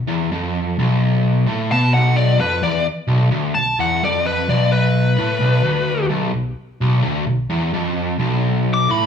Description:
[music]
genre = rock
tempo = 129 BPM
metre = 4/4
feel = straight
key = unclear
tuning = A4 = 440 Hz
[part]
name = overdriven electric guitar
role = riff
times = 0.0-9.1 s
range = B1 to B2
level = -17 LUFS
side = equal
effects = none
[part]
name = smooth overdriven lead guitar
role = melody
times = 1.7-9.1 s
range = B4 to D6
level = -19 LUFS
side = left 3 dB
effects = digital delay
[sound]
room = moderate large studio reverb, RT60 1.2 s, digital ambience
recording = small room ambience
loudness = -16 LUFS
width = side -7 dB against mid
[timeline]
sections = 0.0-9.1 A section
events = none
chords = 0.0 B(b5, no3)

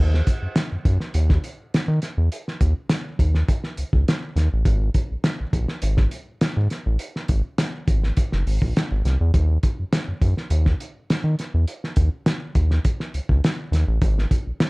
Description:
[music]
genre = funk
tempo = 103 BPM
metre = 4/4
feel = straight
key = Eb dorian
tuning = A4 = 440 Hz
[part]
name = round analog bass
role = bass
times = 0.0-14.5 s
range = Gb1 to Eb3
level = -19 LUFS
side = equal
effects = none
[part]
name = cloth-damped thuddy drum kit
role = drums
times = 0.1-14.7 s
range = hi-hat, kick drum, snare drum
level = -22 LUFS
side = equal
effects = none
[sound]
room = little or no reverb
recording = dark, warm production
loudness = -19 LUFS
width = side -28 dB against mid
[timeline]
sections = 0.0-14.7 A section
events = none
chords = none

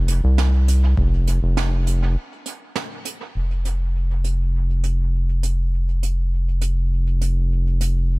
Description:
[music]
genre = ambient dub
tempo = 101 BPM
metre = 4/4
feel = straight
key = unclear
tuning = A4 = 440 Hz
[part]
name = round analog bass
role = bass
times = 0.0-8.2 s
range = F1 to C2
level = -18 LUFS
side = equal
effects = none
[part]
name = jazz brush drum kit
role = drums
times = 0.1-7.9 s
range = hi-hat, snare drum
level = -30 LUFS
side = right 6 dB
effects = dub echo
[part]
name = electronic kick drum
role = drums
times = 1.0-1.1 s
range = none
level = -24 LUFS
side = equal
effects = overdrive
[sound]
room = little or no reverb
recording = none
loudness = -18 LUFS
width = side -23 dB against mid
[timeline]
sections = 0.0-3.4 A section; 3.4-8.2 B section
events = break 2.2-3.4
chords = none

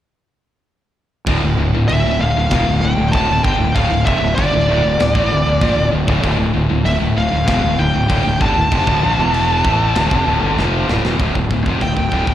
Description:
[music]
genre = heavy metal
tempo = 97 BPM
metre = 4/4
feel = straight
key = D minor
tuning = A4 = 440 Hz
[part]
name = distorted electric guitar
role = riff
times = 1.3-12.3 s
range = D2 to A3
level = -23 LUFS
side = right 8 dB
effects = distortion
[part]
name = high-gain distorted guitar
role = riff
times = 1.3-12.3 s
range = D2 to A3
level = -20 LUFS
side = left 6 dB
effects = distortion
[part]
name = fuzz fingered electric bass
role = bass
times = 1.3-12.3 s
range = D1 to Bb1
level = -18 LUFS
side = equal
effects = overdrive
[part]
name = tight metal drum kit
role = drums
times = 1.3-12.3 s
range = china cymbal, crash cymbal, kick drum, snare drum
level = -23 LUFS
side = right 1 dB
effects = none
[part]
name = high-gain lead guitar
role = melody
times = 1.9-12.3 s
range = D5 to A5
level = -19 LUFS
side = equal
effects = distortion, slapback echo, ping-pong delay
[sound]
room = studio ambience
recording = live gig heard through the venue's PA, recital hall reverb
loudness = -13 LUFS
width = side -12 dB against mid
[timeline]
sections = 1.3-11.2 A section; 11.2-12.3 B section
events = drum fill 10.6-11.2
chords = 1.3 Dm

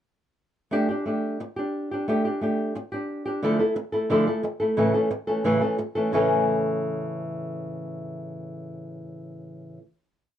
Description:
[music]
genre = flamenco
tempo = 178 BPM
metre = 4/4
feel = straight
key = A major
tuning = A4 = 440 Hz
[part]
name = flamenco guitar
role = solo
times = 0.7-9.8 s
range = A2 to A4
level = -24 LUFS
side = equal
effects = none
[sound]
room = light reverb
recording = dry, close 1970s-style studio recording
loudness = -23 LUFS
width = side -10 dB against mid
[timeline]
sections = 0.7-6.1 groove; 6.1-8.8 final chord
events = none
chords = 0.7 A7sus4; 3.4 Dmadd9; 4.8 A

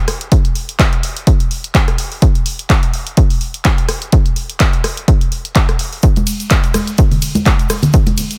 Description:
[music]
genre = house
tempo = 126 BPM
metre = 4/4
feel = swing 56% on 16ths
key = none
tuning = none
[part]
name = punchy analog drum machine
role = drums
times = 0.1-8.4 s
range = handclaps, hi-hat, ride cymbal, rim click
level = -22 LUFS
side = equal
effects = none
[part]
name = electronic kick drum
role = drums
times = 0.3-8.0 s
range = none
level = -14 LUFS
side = equal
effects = none
[part]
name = egg shaker and congas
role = percussion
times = 6.0-8.4 s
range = none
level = -20 LUFS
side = equal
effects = sidechain pumping on perc, dub echo
[sound]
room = little or no reverb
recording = echo-heavy mix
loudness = -14 LUFS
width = mono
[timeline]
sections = 0.0-8.4 A section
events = none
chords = none

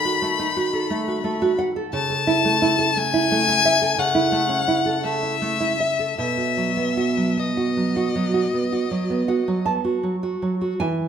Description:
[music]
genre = romantic duo for violin and classical guitar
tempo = 50-60 BPM (dotted quarters)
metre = 12/8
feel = rubato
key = unclear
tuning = A4 = 438 Hz
[part]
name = clear violin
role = melody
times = 0.0-9.7 s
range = D#5 to B5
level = -22 LUFS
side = left 5 dB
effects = none
[part]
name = nylon-string guitar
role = accompaniment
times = 0.0-11.1 s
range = B2 to A5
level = -21 LUFS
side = right 2 dB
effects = none
[sound]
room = moderate recital hall reverb, RT60 1.6 s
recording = minimal, uncompressed stereo recording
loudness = -19 LUFS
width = side -8 dB against mid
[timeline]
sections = 0.0-10.8 A section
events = none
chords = 0.0 B7/D#; 1.9 A/C#; 6.2 B

